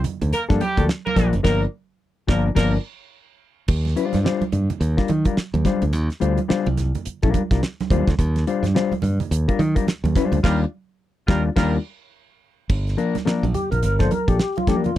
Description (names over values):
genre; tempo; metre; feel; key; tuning
funk; 107 BPM; 4/4; swing 60% on 16ths; unclear; A4 = 440 Hz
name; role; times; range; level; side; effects
modern bright fingered electric bass; bass; 0.0-15.0 s; F#1 to Eb3; -21 LUFS; equal; none
damped 70s drum kit; drums; 0.0-15.0 s; crash cymbal, hi-hat, kick drum, snare drum; -22 LUFS; right 1 dB; none
congas; percussion; 0.0-15.0 s; none; -28 LUFS; right 7 dB; none
clear horn section; second line; 0.3-2.7, 10.4-11.7 s; G3 to Bb4; -25 LUFS; right 2 dB; none
mellow electric guitar; accompaniment; 0.5-14.9 s; F3 to C5; -22 LUFS; left 6 dB; none
tonewheel organ; melody; 13.5-15.0 s; F4 to C5; -24 LUFS; left 2 dB; overdrive, chorus vibrato, slow rotary speaker
room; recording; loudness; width
little or no reverb; dry, close 1970s-style studio recording; -18 LUFS; side -13 dB against mid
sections
0.0-3.7 A section; 3.7-12.7 B section; 12.7-15.0 C section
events
band accent 1.4-3.7, 10.4-12.7; break 12.1-12.7; tonewheel organ solo 12.7-15.0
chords
0.0 Gm7; 3.7 Ebmaj9; 12.7 Gm7